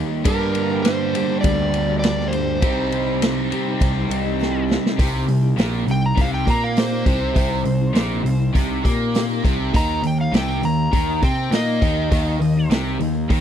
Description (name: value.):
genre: classic rock.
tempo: 101 BPM.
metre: 4/4.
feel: straight.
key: C minor.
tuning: A4 = 441 Hz.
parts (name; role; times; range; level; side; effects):
picked steel-string acoustic guitar; accompaniment; 0.0-13.4 s; G2 to Bb4; -32 LUFS; left 12 dB; none.
cranked stack guitar; riff; 0.0-13.4 s; G2 to Eb4; -25 LUFS; left 10 dB; overdrive.
cranked stack guitar; riff; 0.0-13.4 s; G2 to Eb4; -24 LUFS; right 12 dB; overdrive, phaser.
fuzz picked electric bass; bass; 0.0-13.4 s; Bb1 to C3; -24 LUFS; equal; overdrive.
overdriven slide guitar; melody; 0.3-12.7 s; Bb4 to Bb5; -26 LUFS; left 1 dB; none.
vintage drum kit; drums; 0.3-13.4 s; hi-hat, kick drum, ride cymbal, snare drum; -21 LUFS; equal; none.
room: small room ambience.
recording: dry, close 1970s-style studio recording.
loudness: -17 LUFS.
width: side -9 dB against mid.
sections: 0.0-5.0 A section; 5.0-13.4 B section.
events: drum fill 4.4-5.0; electric slide guitar solo 5.0-13.4.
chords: 0.2 Gm; 2.6 Cm; 9.7 Eb5.